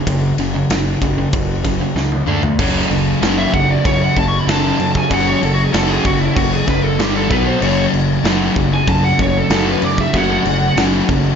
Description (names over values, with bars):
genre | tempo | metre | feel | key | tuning
heavy metal | 95 BPM | 4/4 | straight | F# minor | A4 = 441 Hz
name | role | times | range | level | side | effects
sludgy distorted guitar | riff | 0.0-11.4 s | F#2 to D4 | -20 LUFS | left 10 dB | overdrive
sludgy distorted guitar | riff | 0.0-11.4 s | F#2 to D4 | -20 LUFS | right 7 dB | overdrive
fuzz fingered electric bass | bass | 0.1-11.3 s | F#1 to F#2 | -22 LUFS | equal | overdrive
big rock drum kit | drums | 0.1-11.2 s | crash cymbal, kick drum, ride cymbal, snare drum, toms | -20 LUFS | equal | none
fuzz guitar | riff | 2.6-11.4 s | F#2 to D5 | -22 LUFS | left 1 dB | distortion
high-gain lead guitar | melody | 3.4-10.8 s | E4 to C#6 | -19 LUFS | equal | distortion, digital delay
room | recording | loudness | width
light reverb | nothing above 7.5 kHz | -13 LUFS | side -7 dB against mid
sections
0.0-2.6 A section; 2.6-11.4 B section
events
drum fill 2.0-2.6; lead electric guitar solo 2.6-11.4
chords
0.0 F#5; 2.3 D5; 2.6 F#m; 7.0 G5; 7.3 B5; 7.6 F#m